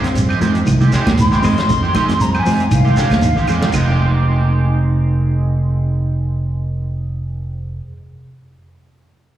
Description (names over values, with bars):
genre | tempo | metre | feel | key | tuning
afrobeat | 117 BPM | 4/4 | swing 55% on 16ths | F minor | A4 = 440 Hz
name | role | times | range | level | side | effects
silver concert flute | melody | 0.0-3.7 s | F5 to C6 | -20 LUFS | left 2 dB | slapback echo
electric guitar at the edge of break-up | arpeggios | 0.0-3.9 s | D3 to Ab3 | -24 LUFS | left 4 dB | spring reverb, slapback echo
electric guitar at the edge of break-up | stabs | 0.0-8.0 s | Eb3 to G4 | -24 LUFS | right 5 dB | analog chorus, slapback echo
fingered electric bass | bass | 0.0-7.8 s | F1 to F2 | -16 LUFS | right 1 dB | none
warm soul drum kit | drums | 0.0-3.9 s | china cymbal, hi-hat, kick drum, snare drum | -22 LUFS | right 1 dB | none
shekere | percussion | 0.1-3.9 s | none | -25 LUFS | right 2 dB | none
claves | percussion | 0.3-3.9 s | none | -34 LUFS | left 3 dB | none
congas | percussion | 0.4-3.9 s | none | -22 LUFS | right 1 dB | slapback echo
room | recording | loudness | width
light reverb | live gig heard through the venue's PA, recital hall reverb, small room ambience | -13 LUFS | side -12 dB against mid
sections
0.0-3.7 A section; 3.7-7.8 B section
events
flute solo 0.0-3.7; drum fill 3.1-3.7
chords
0.0 Fm9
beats
0.15 0.66 1.18 | 1.69 2.20 2.71 3.22 | 3.73 4.25 4.76 5.27 | 5.78 6.29 6.80 7.32